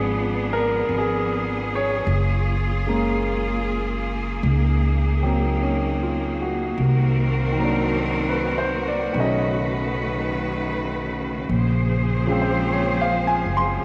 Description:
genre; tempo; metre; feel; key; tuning
jazz ballad; 51 BPM; 4/4; swing 67% on 8ths; Bb minor; A4 = 440 Hz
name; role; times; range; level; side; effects
warm concert grand piano; accompaniment; 0.0-13.8 s; Db3 to C6; -27 LUFS; equal; none
clear studio cello section; sustained chords; 0.0-13.8 s; C#3 to C5; -28 LUFS; equal; none
upright bass; bass; 0.0-13.8 s; Gb1 to Db2; -26 LUFS; equal; none
room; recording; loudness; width
moderate plate reverb, RT60 3.3 s; none; -22 LUFS; mono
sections
0.0-13.8 A section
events
none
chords
0.0 Db7b9; 2.1 Gbmaj9; 6.8 Cm7b5; 9.1 B9; 11.5 Bbm9

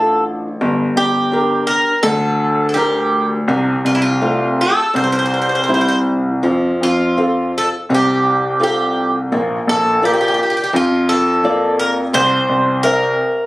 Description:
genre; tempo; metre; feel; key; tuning
fado-style ballad; 84 BPM; 4/4; rubato; F major; A4 = 441 Hz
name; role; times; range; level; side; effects
Irish bouzouki; melody; 0.0-13.5 s; E4 to C5; -16 LUFS; right 1 dB; none
flamenco guitar; accompaniment; 0.0-13.4 s; C3 to E5; -19 LUFS; equal; none
warm baby grand piano; bass; 0.0-13.2 s; G1 to F2; -18 LUFS; equal; none
room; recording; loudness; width
light reverb; recorded on a phone in the room, studio reverb, compression; -13 LUFS; side -18 dB against mid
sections
0.0-13.5 A section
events
none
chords
0.0 Dm; 0.6 Gm; 3.5 F/C; 4.9 C; 6.4 F; 9.3 Bb; 12.1 C7

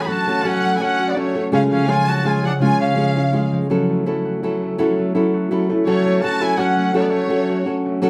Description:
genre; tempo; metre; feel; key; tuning
mexican folk, mariachi; 166 BPM; 3/4; swing 54% on 8ths, rubato; F# minor; A4 = 441 Hz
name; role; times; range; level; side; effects
dark studio violin section; melody; 0.0-3.5, 5.9-7.7 s; C#5 to B5; -24 LUFS; equal; plate reverb
bright trumpet; second line; 0.0-3.5, 5.9-7.7 s; A3 to G#4; -29 LUFS; equal; none
nylon-string guitar; accompaniment; 0.0-8.1 s; C#3 to A4; -22 LUFS; equal; none
concert harp; arpeggios; 0.0-8.1 s; C#3 to F#4; -24 LUFS; equal; tape echo
room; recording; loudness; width
wet studio reverb, RT60 0.6 s; none; -19 LUFS; mono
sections
0.0-8.0 A section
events
none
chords
0.0 F#m; 1.5 C#; 3.7 F#m7

